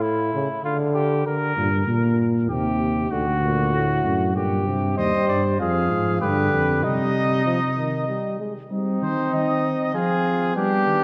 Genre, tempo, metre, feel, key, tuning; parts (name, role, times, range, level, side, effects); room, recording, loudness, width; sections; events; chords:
classical, imitative canzona for brass ensemble; 97 BPM; 3/4; straight; G minor, C minor from 5.0 s; A4 = 440 Hz
clear flugelhorn; second line; 0.0-11.0 s; D4 to C5; -28 LUFS; equal
breathy trombone; accompaniment; 0.0-11.0 s; A2 to C4; -28 LUFS; equal
dark tuba; bass; 1.6-11.0 s; D2 to G3; -26 LUFS; equal
mellow trumpet; melody; 5.0-11.0 s; G4 to F5; -27 LUFS; equal
wet concert hall reverb, RT60 2.2 s; -22 LUFS; mono
0.0-5.0 A section; 5.0-8.7 B section; 8.7-11.0 C section
0.0 A; 0.6 Dm; 1.3 Gm; 2.5 Cm/Eb; 3.1 D; 4.3 Gm; 5.0 Cm/Eb; 5.6 Fm; 6.2 G; 6.8 Cm; 9.9 Fm